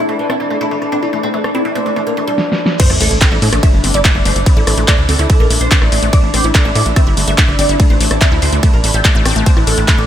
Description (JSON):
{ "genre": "psychedelic trance", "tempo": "144 BPM", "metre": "4/4", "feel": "straight", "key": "A minor", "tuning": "A4 = 436 Hz", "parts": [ { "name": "oud", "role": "melody", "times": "0.0-10.0 s", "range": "E3 to E5", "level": "-20 LUFS", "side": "equal", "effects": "phaser, sidechain pumping, tape echo" }, { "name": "overtone-sweeping drone", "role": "sustained chords", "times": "0.0-10.1 s", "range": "D4 to D5", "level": "-21 LUFS", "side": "left 1 dB", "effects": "chorus, built-in reverb, phaser, sidechain pumping" }, { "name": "wide unison pluck", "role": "riff", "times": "0.0-9.9 s", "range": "A3 to A4", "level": "-22 LUFS", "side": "moving between left 3 dB and right 4 dB", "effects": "auto-pan, cassette tape, sidechain pumping, tape echo" }, { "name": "deep dark ambient pad", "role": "texture", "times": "0.0-2.4 s", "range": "E4 to D6", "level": "-28 LUFS", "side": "left 2 dB", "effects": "chorus, built-in reverb, sidechain pumping" }, { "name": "big-room dance drum kit", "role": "drums", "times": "0.1-10.0 s", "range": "crash cymbal, handclaps, hi-hat, ride cymbal, rim click, snare drum", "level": "-17 LUFS", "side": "equal", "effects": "low-pass filter on hats, low-pass filter on snare, low-pass filter on cymbals" }, { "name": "electronic kick drum", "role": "drums", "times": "2.8-10.0 s", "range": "none", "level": "-11 LUFS", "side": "equal", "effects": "none" }, { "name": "sub drop", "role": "sound effects", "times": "2.8-4.5 s", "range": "none", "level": "-24 LUFS", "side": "equal", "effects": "none" }, { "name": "plucky analog bass", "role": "bass", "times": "2.9-10.1 s", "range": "G1 to A2", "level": "-16 LUFS", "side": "equal", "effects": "tube saturation" } ], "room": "moderate cathedral reverb, RT60 5.9 s", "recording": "dreamy mix soaked in reverb", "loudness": "-10 LUFS", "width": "side -10 dB against mid", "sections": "0.0-2.8 A section; 2.8-10.1 B section", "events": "filter sweep on synth arpeggio sound 0.0-2.8; drum fill 2.4-2.8; drop 2.8-10.1; impact 2.8-4.5", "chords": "0.0 A5", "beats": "0.30 0.71 | 1.13 1.55 1.96 2.38 | 2.80 3.21 3.63 4.05 | 4.46 4.88 5.30 5.71 | 6.13 6.55 6.96 7.38 | 7.80 8.21 8.63 9.05 | 9.46 9.88" }